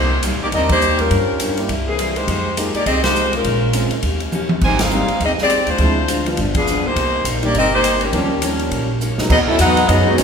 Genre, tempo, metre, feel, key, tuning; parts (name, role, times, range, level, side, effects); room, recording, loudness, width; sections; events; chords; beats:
jazz, big band swing; 205 BPM; 4/4; swing 59% on 8ths; C minor; A4 = 439 Hz
clear saxophone section; melody; 0.0-10.2 s; Eb3 to Ab5; -18 LUFS; left 1 dB
picked steel-string acoustic guitar; accompaniment; 0.0-10.2 s; G2 to Ab4; -26 LUFS; left 3 dB
upright bass; bass; 0.0-10.2 s; G1 to G2; -21 LUFS; right 1 dB
swinging big-band drum kit; drums; 0.2-10.2 s; crash cymbal, hi-hat, kick drum, ride cymbal, snare drum, toms; -22 LUFS; equal
clear concert grand piano; accompaniment; 0.5-10.2 s; Eb3 to G4; -25 LUFS; right 1 dB
bright trombone section; second line; 9.3-10.2 s; D#3 to F#4; -19 LUFS; right 3 dB
wet recital hall reverb, RT60 1.6 s; recorded in a church or concert hall; -15 LUFS; side -6 dB against mid
0.0-9.3 A section
band accent 0.7, 3.0, 4.8, 6.5; drum fill 4.3, 9.0
0.0 Cm7; 1.1 Gm7b5; 1.7 C7; 2.3 Fm11; 3.4 Bbm7; 4.0 Eb7; 4.6 Abmaj7; 5.8 Dm7b5; 6.4 G7; 7.0 Cm7; 8.1 Eb7; 9.3 G#m7
0.23 0.52 0.81 | 1.10 1.40 1.69 1.98 | 2.27 2.57 2.86 3.15 | 3.44 3.74 4.03 4.32 | 4.62 4.91 5.20 5.49 | 5.79 6.08 6.37 6.66 | 6.96 7.25 7.54 7.83 | 8.13 8.42 8.71 9.01 | 9.30 9.59 9.88 10.18